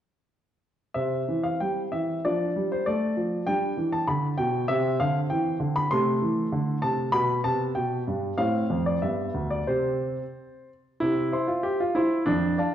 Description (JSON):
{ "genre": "classical-period piano sonatina", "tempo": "88-100 BPM", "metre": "2/4", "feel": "rubato", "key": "C major", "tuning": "A4 = 440 Hz", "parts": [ { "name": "warm grand piano", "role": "solo", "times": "0.9-12.7 s", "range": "D2 to C6", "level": "-24 LUFS", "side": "equal", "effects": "none" } ], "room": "wet recital hall reverb, RT60 1.4 s", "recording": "worn, warbling old tape, cassette tape, warbly pitch drift", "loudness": "-24 LUFS", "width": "side -10 dB against mid", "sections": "1.0-11.0 A section; 11.0-12.7 B section", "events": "none", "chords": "1.0 C; 2.2 Dm/F; 3.5 G; 4.7 C; 5.9 D5/C; 7.1 G/B; 8.4 F/A; 9.0 G; 9.7 C5; 11.0 C" }